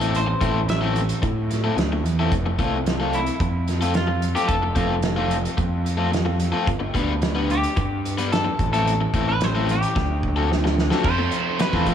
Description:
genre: indie rock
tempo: 110 BPM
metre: 4/4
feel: straight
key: unclear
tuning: A4 = 440 Hz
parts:
  - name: semi-hollow electric guitar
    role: melody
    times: 0.0-11.9 s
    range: E4 to E5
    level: -28 LUFS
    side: equal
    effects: dub echo
  - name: overdriven electric guitar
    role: riff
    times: 0.0-11.9 s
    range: D3 to B4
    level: -26 LUFS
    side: left 5 dB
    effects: dub echo
  - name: fuzz picked electric bass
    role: bass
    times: 0.0-11.9 s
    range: F1 to F3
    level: -23 LUFS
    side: right 1 dB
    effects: overdrive
  - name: loose indie drum kit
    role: drums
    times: 0.0-11.9 s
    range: crash cymbal, hi-hat, kick drum, snare drum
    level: -25 LUFS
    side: right 1 dB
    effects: dub echo
  - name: raw garage guitar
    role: riff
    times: 11.0-11.9 s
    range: F2 to F4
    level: -26 LUFS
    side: right 9 dB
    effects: overdrive, lush chorus, dub echo
room: light reverb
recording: echo-heavy mix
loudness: -19 LUFS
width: side -9 dB against mid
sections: 0.0-11.1 A section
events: drum fill 10.0-11.1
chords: 0.0 Am; 2.3 F; 6.7 G; 8.6 Am; 10.0 D7sus4; 11.1 Fmaj7

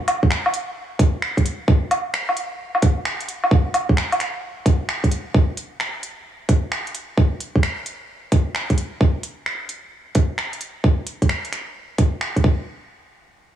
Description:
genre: future garage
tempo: 131 BPM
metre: 4/4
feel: swing 66% on 16ths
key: none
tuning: none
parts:
  - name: organic electronic drum kit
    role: drums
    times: 0.1-12.4 s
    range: finger snaps, hi-hat, woodblock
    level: -24 LUFS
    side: equal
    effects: overdrive
  - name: electronic kick drum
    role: drums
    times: 0.2-12.6 s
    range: none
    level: -17 LUFS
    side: right 1 dB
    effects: overdrive
room: little or no reverb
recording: none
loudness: -19 LUFS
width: side -10 dB against mid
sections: 0.0-12.7 A section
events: none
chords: none

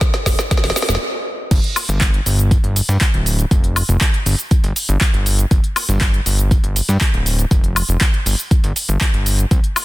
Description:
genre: progressive house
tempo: 120 BPM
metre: 4/4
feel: straight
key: unclear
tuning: A4 = 441 Hz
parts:
  - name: deep house drum kit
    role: drums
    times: 0.0-9.8 s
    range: crash cymbal, handclaps, hi-hat, shaker, snare drum, woodblock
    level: -20 LUFS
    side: equal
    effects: sidechain pumping on hats, sidechain pumping on perc, sidechain pumping on cymbals
  - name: electronic kick drum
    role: drums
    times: 0.0-9.6 s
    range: none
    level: -15 LUFS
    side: equal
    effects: none
  - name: fat analog bass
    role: bass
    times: 0.3-9.6 s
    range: D1 to G2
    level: -17 LUFS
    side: equal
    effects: sidechain pumping
  - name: breakbeat sampler-style drum kit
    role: drums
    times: 1.5-9.8 s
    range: hi-hat, snare drum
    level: -30 LUFS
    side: right 2 dB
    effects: sidechain pumping on hats, high-pass filter on hats, high-pass filter on snare
room: little or no reverb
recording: dense, heavily limited modern master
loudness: -14 LUFS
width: side -18 dB against mid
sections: 0.0-1.5 A section; 1.5-9.8 B section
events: build-up 0.0-1.5; drum fill 0.0-1.0; stop 1.0-1.5; drop 1.5-9.8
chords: none

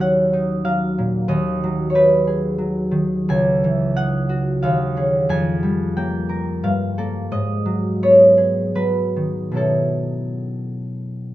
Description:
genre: classical, solo harp piece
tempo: 71-95 BPM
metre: 3/4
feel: rubato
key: unclear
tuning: A4 = 440 Hz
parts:
  - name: concert harp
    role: solo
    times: 0.0-11.3 s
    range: C#2 to G#5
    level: -17 LUFS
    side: equal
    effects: none
room: little or no reverb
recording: close, detailed microphones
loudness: -17 LUFS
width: side -15 dB against mid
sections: 0.0-11.3 A section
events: none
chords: 0.0 D#m7; 1.3 G#m7/D#; 3.3 C#m11; 4.6 D#m11; 5.3 Fm11; 6.6 Gm9; 7.3 G#m7; 9.6 B9sus4

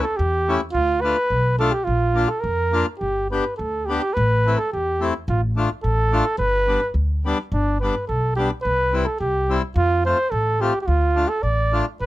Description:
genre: alpine folk, alpine dance band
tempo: 107 BPM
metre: 2/4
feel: rubato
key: unclear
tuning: A4 = 440 Hz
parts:
  - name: mellow flugelhorn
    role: melody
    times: 0.0-12.1 s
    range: D4 to D5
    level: -21 LUFS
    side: right 1 dB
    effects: none
  - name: accordion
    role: accompaniment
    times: 0.0-11.9 s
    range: G3 to G4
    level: -24 LUFS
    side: left 4 dB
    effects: none
  - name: upright bass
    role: bass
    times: 0.2-12.1 s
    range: G1 to F2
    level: -22 LUFS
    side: equal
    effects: none
room: little or no reverb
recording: close, detailed microphones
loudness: -18 LUFS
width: side -16 dB against mid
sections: 0.0-12.1 A section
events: none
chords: 0.0 A; 0.8 Dm; 1.9 Bb; 3.0 G; 4.2 Am; 5.3 Dm/A; 6.4 G; 8.7 C; 9.8 F; 10.9 Dm

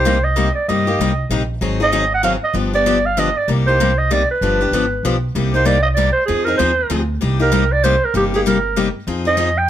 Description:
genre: acoustic string swing (jazz manouche)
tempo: 193 BPM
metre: 3/4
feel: swing 60% on 8ths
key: C minor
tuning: A4 = 440 Hz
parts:
  - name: growling clarinet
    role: melody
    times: 0.0-9.7 s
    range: G4 to G5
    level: -17 LUFS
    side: right 3 dB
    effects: plate reverb
  - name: picked steel-string acoustic guitar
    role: accompaniment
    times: 0.0-9.5 s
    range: C3 to Ab4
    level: -19 LUFS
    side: left 5 dB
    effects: none
  - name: upright bass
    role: bass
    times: 0.0-9.7 s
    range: G1 to G2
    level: -20 LUFS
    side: right 1 dB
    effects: none
room: light reverb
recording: none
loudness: -14 LUFS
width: side -11 dB against mid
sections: 0.0-5.4 A section; 5.4-9.7 A section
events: none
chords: 0.0 Cm7; 1.6 Ab7; 2.6 G7; 3.5 Cm7; 4.4 G7; 5.4 Cm7; 6.3 Fm7; 7.2 Cm7; 9.1 Fm7

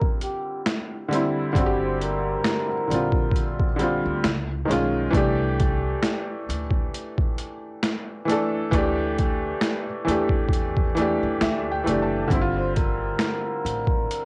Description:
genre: lo-fi hip hop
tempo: 67 BPM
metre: 4/4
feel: swing 58% on 16ths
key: G dorian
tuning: A4 = 440 Hz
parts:
  - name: trumpet with bucket mute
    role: melody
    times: 0.0-3.6, 12.6-14.2 s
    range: G4 to C5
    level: -32 LUFS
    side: equal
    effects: low-pass filter, cassette tape, tape echo
  - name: felt-muted upright piano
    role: accompaniment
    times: 0.0-14.2 s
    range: D3 to A5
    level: -27 LUFS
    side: equal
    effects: low-pass filter, cassette tape
  - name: boom bap sampler-style drum kit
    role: drums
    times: 0.0-14.2 s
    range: finger snaps, hi-hat, kick drum, snare drum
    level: -27 LUFS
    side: equal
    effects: overdrive, cassette tape
  - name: upright bass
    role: bass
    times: 1.6-14.0 s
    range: F#1 to E2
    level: -33 LUFS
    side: equal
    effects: none
room: light reverb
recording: home recording on cassette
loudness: -24 LUFS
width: mono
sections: 0.0-14.2 A section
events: none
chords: 0.0 Gm11; 4.2 C#9; 5.1 Cadd9; 8.7 Dsus24; 12.3 Gm11

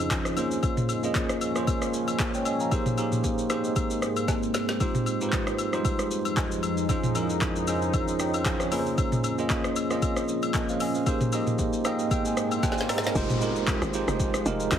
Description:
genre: amapiano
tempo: 115 BPM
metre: 4/4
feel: swing 55% on 16ths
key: Bb dorian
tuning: A4 = 439 Hz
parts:
  - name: bell-like tine electric piano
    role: accompaniment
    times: 0.0-14.8 s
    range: F3 to Bb5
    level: -28 LUFS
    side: right 2 dB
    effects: fast stereo tremolo
  - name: deep dark ambient pad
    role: sustained chords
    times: 0.0-14.8 s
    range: F2 to F4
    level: -32 LUFS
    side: equal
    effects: chorus, built-in reverb, sidechain pumping
  - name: afro-pop drum kit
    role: drums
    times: 0.1-14.8 s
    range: handclaps, hi-hat, kick drum, rim click, shaker, snare drum, toms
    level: -28 LUFS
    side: equal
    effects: overdrive
  - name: woodblock and agogo bells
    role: percussion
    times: 0.1-13.0 s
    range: none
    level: -35 LUFS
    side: left 7 dB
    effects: none
  - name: riser and downlifter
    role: sound effects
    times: 12.5-14.8 s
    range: none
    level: -38 LUFS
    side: equal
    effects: none
  - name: tight log drum bass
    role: bass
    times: 13.2-14.8 s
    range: F1 to Ab1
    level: -32 LUFS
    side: equal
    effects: none
room: light reverb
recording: heavily compressed radio sound, multiband compression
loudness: -24 LUFS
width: side -9 dB against mid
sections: 0.0-13.2 A section; 13.2-14.8 B section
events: drum fill 4.3-4.8, 12.6-13.2; tine electric piano fill 11.6-13.2; drop 13.2-14.8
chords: 0.4 Bbm7; 2.7 Abmaj9; 4.8 Fm7; 6.9 Dbmaj9/F; 8.7 Bbm7; 11.1 Abmaj9; 13.2 Fm7

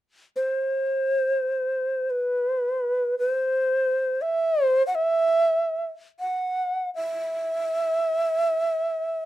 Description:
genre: japanese traditional, Japanese chamber music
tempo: free time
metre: none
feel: none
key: unclear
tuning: A4 = 440 Hz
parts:
  - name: bright long shakuhachi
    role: solo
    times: 0.4-9.3 s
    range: B4 to F#5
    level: -22 LUFS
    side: right 1 dB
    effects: none
room: light reverb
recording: dark, warm production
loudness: -22 LUFS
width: side -14 dB against mid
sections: 0.0-9.3 A section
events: none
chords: none

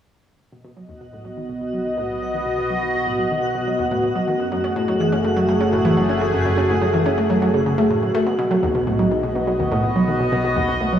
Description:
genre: ambient, sequencer-driven space music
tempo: 124 BPM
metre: 4/4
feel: straight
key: unclear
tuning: A4 = 441 Hz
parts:
  - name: sweeping resonant pad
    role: sustained chords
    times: 1.3-11.0 s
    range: A3 to D#5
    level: -20 LUFS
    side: equal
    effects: chorus
  - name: analog pluck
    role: riff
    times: 0.5-11.0 s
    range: D#2 to C#4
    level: -22 LUFS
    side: equal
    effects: chorus, analog delay
  - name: fat analog bass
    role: bass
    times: 0.5-11.0 s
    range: F#1 to B1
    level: -30 LUFS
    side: equal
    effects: none
  - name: twinkling granular texture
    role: texture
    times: 1.8-8.3 s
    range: F#4 to F#5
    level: -32 LUFS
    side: right 1 dB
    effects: built-in reverb
room: wet huge ambient reverb, RT60 7.9 s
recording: studio reverb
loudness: -17 LUFS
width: side -9 dB against mid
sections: 0.5-8.3 A section; 8.3-11.0 B section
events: fade-in on synth arpeggio sound 0.5-8.3; fade-in on analog synth bass 0.5-8.3; fade-in on synth texture 0.5-8.3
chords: 0.5 B; 4.4 F#madd9; 8.3 B

